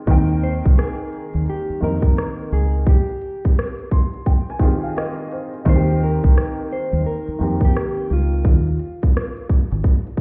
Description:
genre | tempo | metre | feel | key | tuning
lo-fi hip hop | 86 BPM | 4/4 | swing 63% on 16ths | Eb mixolydian | A4 = 440 Hz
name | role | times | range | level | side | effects
warm upright piano | accompaniment | 0.0-8.5 s | Eb3 to C6 | -28 LUFS | equal | cassette tape
deep dub fingered electric bass | bass | 0.1-9.8 s | Ab1 to F2 | -21 LUFS | equal | none
organic electronic drum kit | drums | 0.1-10.2 s | hi-hat, kick drum, rim click | -20 LUFS | equal | none
egg shaker | percussion | 0.1-10.2 s | none | barely audible | none | none
mellow electric guitar | melody | 0.4-10.2 s | F4 to C5 | -30 LUFS | equal | none
room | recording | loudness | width
little or no reverb | heard muffled through a wall, stone room reverb, EQ | -19 LUFS | mono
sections
0.0-10.2 A section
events
none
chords
0.1 Eb6; 2.9 Eb69; 5.7 Eb6; 8.4 Ab5

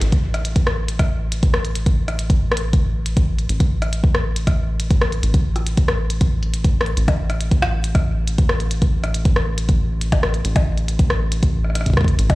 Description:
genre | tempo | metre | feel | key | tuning
IDM | 138 BPM | 4/4 | straight | unclear | A4 = 440 Hz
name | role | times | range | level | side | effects
rubbery square bass | bass | 0.0-12.3 s | A1 | -20 LUFS | equal | none
glitchy drum kit | drums | 0.0-12.3 s | hi-hat, percussion blips, rim click | -25 LUFS | left 1 dB | tape echo
electronic kick drum | drums | 0.1-12.3 s | none | -16 LUFS | equal | none
room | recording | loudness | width
little or no reverb | played on a big sound system in a bare room, large studio reverb | -16 LUFS | side -19 dB against mid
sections
0.0-12.3 A section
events
none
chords
none

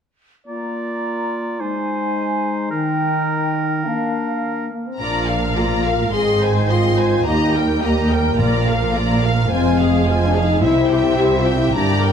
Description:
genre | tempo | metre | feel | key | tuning
cinematic | 106 BPM | 4/4 | straight | Bb mixolydian | A4 = 438 Hz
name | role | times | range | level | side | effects
mellow clarinet | second line | 0.5-4.7 s | D4 to F4 | -26 LUFS | left 1 dB | none
mellow large flute ensemble | second line | 0.5-4.7 s | F5 to Bb5 | -26 LUFS | equal | none
warm oboe | second line | 0.5-4.7 s | Bb4 to D5 | -26 LUFS | right 4 dB | none
mellow French horn section | sustained chords | 0.5-12.1 s | Eb3 to Ab4 | -21 LUFS | left 3 dB | none
warm symphonic violin section | melody | 5.0-12.1 s | E5 to C6 | -25 LUFS | left 3 dB | none
rich symphonic violin section | second line | 5.0-12.1 s | Ab4 to G5 | -26 LUFS | left 4 dB | none
warm symphonic viola section | accompaniment | 5.0-12.1 s | E4 to C5 | -26 LUFS | right 2 dB | none
clear trombone section | sustained chords | 5.0-12.1 s | Eb3 to C4 | -25 LUFS | right 5 dB | none
rich symphonic double bass section | bass | 5.0-12.1 s | F1 to Eb2 | -22 LUFS | right 3 dB | none
warm symphonic cello section | bass | 5.0-12.1 s | Eb2 to C3 | -22 LUFS | right 2 dB | none
timpani | percussion | 8.4-9.2 s | Bb2 | -25 LUFS | left 2 dB | none
room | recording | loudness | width
moderate scoring stage reverb, RT60 1.8 s | none | -16 LUFS | side -7 dB against mid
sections
0.5-5.0 A section; 5.0-12.1 B section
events
none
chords
0.5 Bb; 1.6 Ab; 2.7 Eb; 3.9 Bb; 6.1 Ab; 7.3 Eb; 8.4 Bb; 9.5 Fm; 10.6 C

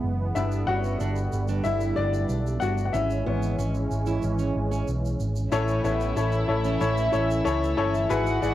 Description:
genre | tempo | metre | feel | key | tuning
piano-driven pop | 93 BPM | 4/4 | straight | A major | A4 = 441 Hz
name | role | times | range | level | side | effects
clear upright piano | accompaniment | 0.0-8.5 s | G#2 to F#5 | -27 LUFS | left 5 dB | cassette tape
warm analog pad | sustained chords | 0.0-8.5 s | D3 to C#4 | -31 LUFS | right 2 dB | chorus, cassette tape
picked electric bass | bass | 0.0-8.5 s | F#1 to C#2 | -27 LUFS | right 1 dB | none
picked steel-string acoustic guitar | riff | 0.4-8.5 s | B3 to F#4 | -33 LUFS | right 7 dB | cassette tape
egg shaker | percussion | 0.4-8.5 s | none | -48 LUFS | right 7 dB | none
warm studio violin section | second line | 5.5-8.5 s | E4 to F#5 | -31 LUFS | equal | cassette tape
room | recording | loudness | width
moderate studio reverb, RT60 0.6 s | home recording on cassette | -23 LUFS | side -13 dB against mid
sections
0.0-5.5 A section; 5.5-8.5 B section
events
upright piano solo 0.0-5.5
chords
0.4 G; 2.9 C#m/G#; 5.5 A

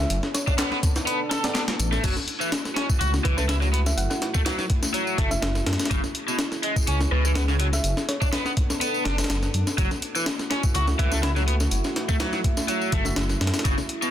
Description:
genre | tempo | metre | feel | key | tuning
breakbeat, breaks | 124 BPM | 4/4 | swing 54% on 16ths | F# minor | A4 = 445 Hz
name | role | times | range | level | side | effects
thumb-piano-like synth pluck | melody | 0.0-8.3 s | B4 to F#5 | -35 LUFS | right 1 dB | chorus, old record sound, dub echo
dark analog pad | sustained chords | 0.0-14.1 s | A3 to A4 | -34 LUFS | right 1 dB | chorus, sidechain pumping
dark detuned saw bass | bass | 0.0-13.7 s | F#1 to F#2 | -24 LUFS | equal | tube saturation
breakbeat sampler-style drum kit | drums | 0.1-14.0 s | crash cymbal, hi-hat, kick drum, snare drum | -25 LUFS | equal | small room ambience
electronic tambourine and handclaps | drums | 0.1-14.1 s | none | -33 LUFS | left 2 dB | overdrive, small room ambience
overdriven electric guitar | riff | 0.5-14.1 s | B2 to A4 | -28 LUFS | equal | vintage 12-bit sampler grit, dub echo
tine electric piano | stabs | 1.4-1.6, 11.0-13.2 s | A3 to E5 | -38 LUFS | right 1 dB | none
room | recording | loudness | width
light reverb | dense, heavily limited modern master | -21 LUFS | side -11 dB against mid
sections
0.0-2.0 A section; 2.0-14.1 B section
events
drop 0.0-2.0; kick drops out 1.1-2.0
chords
0.1 Bm7/F#; 2.0 F#m7; 5.9 C#m/F#; 7.8 Bm7/F#; 9.8 F#m7

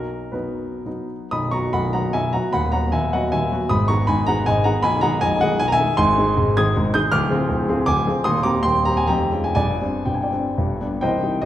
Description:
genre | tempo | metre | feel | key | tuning
classical, romantic triple-time dance for piano with dotted rhythms | 110-170 BPM | 3/4 | rubato | B major | A4 = 439 Hz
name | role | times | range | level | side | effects
warm baby grand piano | solo | 0.0-11.5 s | B0 to Ab6 | -18 LUFS | equal | none
room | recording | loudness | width
wet recital hall reverb, RT60 1.4 s | heard from further back in the room | -18 LUFS | side -12 dB against mid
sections
0.0-1.3 A section; 1.3-11.0 B section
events
none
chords
0.0 B; 1.3 B5; 2.5 B/D#; 3.7 G#m; 4.8 G#m/B; 6.0 Ab; 7.1 Dm7b5; 8.2 Cm/Eb; 9.1 Db/F; 9.6 Gsus4; 10.6 G

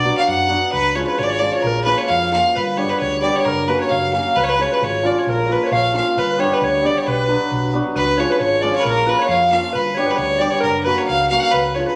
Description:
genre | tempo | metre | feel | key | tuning
balkan folk | 134 BPM | 2/4 | swing 55% on 16ths | unclear | A4 = 440 Hz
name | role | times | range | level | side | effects
clear fiddle | melody | 0.0-12.0 s | A#4 to F#5 | -21 LUFS | equal | none
soft struck synth lead | second line | 0.0-12.0 s | A#4 to F#5 | -24 LUFS | equal | chorus
hammered dulcimer | accompaniment | 0.0-12.0 s | E#3 to G4 | -24 LUFS | equal | none
fingered electric bass | bass | 0.0-11.8 s | F#1 to F#2 | -29 LUFS | equal | none
room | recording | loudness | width
moderate recital hall reverb, RT60 1.6 s | recorded on a phone in the room, studio reverb | -18 LUFS | mono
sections
0.7-8.0 A section; 8.0-12.0 A section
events
none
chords
0.0 Bm; 0.7 C#; 1.6 A#m; 2.6 G; 3.5 F#; 4.4 C#; 5.3 A#m; 6.2 G; 7.1 Bm; 8.0 C#; 8.9 A#m; 9.8 G; 10.6 F#

